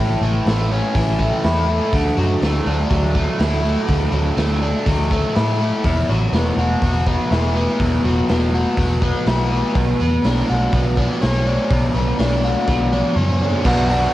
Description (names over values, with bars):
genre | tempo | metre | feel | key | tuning
rock, shoegaze and dream pop | 123 BPM | 4/4 | straight | unclear | A4 = 440 Hz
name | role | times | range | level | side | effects
biting overdriven guitar | riff | 0.0-14.1 s | E2 to C#5 | -19 LUFS | left 1 dB | lush chorus, cassette tape
vintage muted picked electric bass | bass | 0.0-14.1 s | E1 to A2 | -20 LUFS | equal | none
raw garage drum kit | drums | 0.5-14.0 s | crash cymbal, hi-hat, kick drum, snare drum, toms | -22 LUFS | equal | cassette tape
room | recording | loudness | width
little or no reverb | home recording on cassette | -16 LUFS | side -15 dB against mid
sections
0.0-13.6 A section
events
drum fill 12.7-13.6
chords
0.0 A; 1.9 Dadd9; 5.8 Esus2; 9.8 Bmadd9